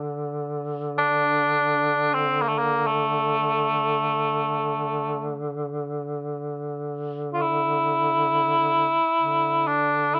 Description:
caucasian folk, Caucasian lament; free time; A4 = 439 Hz
warm cor anglais; melody; 0.0-10.2 s; A3 to F4; -23 LUFS; equal
mellow duduk; drone; 0.0-10.2 s; D3; -31 LUFS; equal
light reverb; close, detailed microphones; -24 LUFS; mono
0.0-10.2 A section

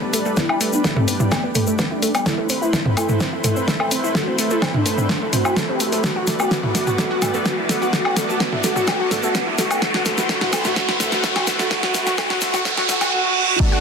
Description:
melodic techno; 127 BPM; 4/4; straight; A dorian; A4 = 439 Hz
lush unison pad; sustained chords; 0.0-13.8 s; G3 to D5; -27 LUFS; equal; chorus, sidechain pumping
analog pluck; arpeggios; 0.0-13.8 s; A3 to F#5; -24 LUFS; right 1 dB; chorus, cassette tape, sidechain pumping, dub echo
riser, reverse cymbal and downlifter; sound effects; 0.1-13.8 s; -25 LUFS; right 2 dB
deep house drum kit; drums; 0.1-13.1 s; hi-hat, snare drum, toms, woodblock; -21 LUFS; equal; sidechain pumping on toms, sidechain pumping on hats, sidechain pumping on perc
egg shaker; percussion; 0.1-13.1 s; -32 LUFS; left 5 dB
expressive portamento lead; melody; 0.4-13.8 s; A3 to G4; -24 LUFS; equal; ensemble chorus, sidechain pumping, digital delay
electronic kick drum; drums; 0.4-13.7 s; -26 LUFS; equal; high-pass filter on kick, high-pass filter on room
moderate huge ambient reverb, RT60 5.1 s; dense, heavily limited modern master, high-pass filter; -17 LUFS; side -6 dB against mid
0.0-13.6 A section
build-up 0.0-13.6; drum fill 0.0-13.1; filter sweep on synth pluck 0.0-13.6; filter sweep on analog synth lead 0.0-13.6; filter sweep 0.0-13.6; riser 0.1-13.1; reverse cymbal 12.7-13.6
0.0 Gadd9; 2.3 Am; 6.0 Bm; 9.8 Am

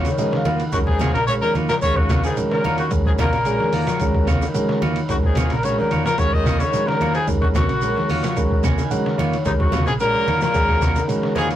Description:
afrobeat; 110 BPM; 4/4; straight; Eb dorian; A4 = 441 Hz
combo organ; accompaniment; 0.0-11.4 s; Ab3 to Ab5; -25 LUFS; right 1 dB; spring reverb
electric guitar at the edge of break-up; arpeggios; 0.0-11.5 s; C3 to F3; -28 LUFS; left 2 dB
clean electric guitar; stabs; 0.0-11.5 s; Bb3 to Db5; -26 LUFS; right 3 dB
fingered electric bass; bass; 0.0-11.6 s; Bb1 to Eb3; -24 LUFS; equal
trip hop sampler-style drum kit; drums; 0.0-11.6 s; hi-hat, kick drum, ride cymbal, snare drum; -24 LUFS; equal
shekere; percussion; 0.1-11.6 s; -31 LUFS; right 2 dB
congas; percussion; 0.2-11.5 s; -29 LUFS; right 1 dB
clear trumpet; melody; 0.7-11.5 s; Eb4 to Eb5; -23 LUFS; left 2 dB
clear trumpet; second line; 0.7-11.5 s; Eb4 to Eb5; -28 LUFS; right 1 dB
raspy baritone saxophone; second line; 0.7-11.5 s; Eb2 to Eb3; -30 LUFS; left 1 dB
wet booth ambience, RT60 0.2 s; rough rehearsal-room recording, warm saturation; -17 LUFS; side -12 dB against mid
0.0-11.6 A section
transistor combo organ fill 0.0-0.7, 8.4-9.5
0.0 Ebm9

